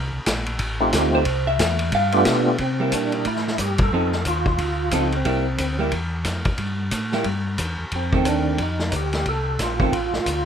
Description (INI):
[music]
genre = soul jazz organ trio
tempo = 180 BPM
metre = 4/4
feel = swing 61% on 8ths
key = C mixolydian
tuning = A4 = 441 Hz
[part]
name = mellow tonewheel organ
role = bass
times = 0.0-10.5 s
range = A1 to C3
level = -25 LUFS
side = left 1 dB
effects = chorus vibrato, slow rotary speaker
[part]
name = vintage drum kit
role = drums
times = 0.3-10.4 s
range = hi-hat, kick drum, ride cymbal, snare drum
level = -25 LUFS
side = left 1 dB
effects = none
[part]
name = percussive tonewheel organ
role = melody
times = 0.8-5.8, 8.0-10.4 s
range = A3 to A4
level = -23 LUFS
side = right 2 dB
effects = slow rotary speaker, chorus vibrato
[part]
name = vintage hollow-body jazz guitar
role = accompaniment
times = 1.1-9.9 s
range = Eb3 to F5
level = -23 LUFS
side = right 1 dB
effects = none
[sound]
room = light reverb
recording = minimal, uncompressed stereo recording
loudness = -19 LUFS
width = side -8 dB against mid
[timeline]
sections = 0.0-2.6 A section; 2.6-10.5 B section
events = hollow-body jazz guitar solo 0.0-2.6; band accent 3.8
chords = 0.0 Bbsus2; 0.6 F7; 1.3 C; 1.9 G7; 2.6 C7; 3.9 F7; 5.3 C7; 7.9 F7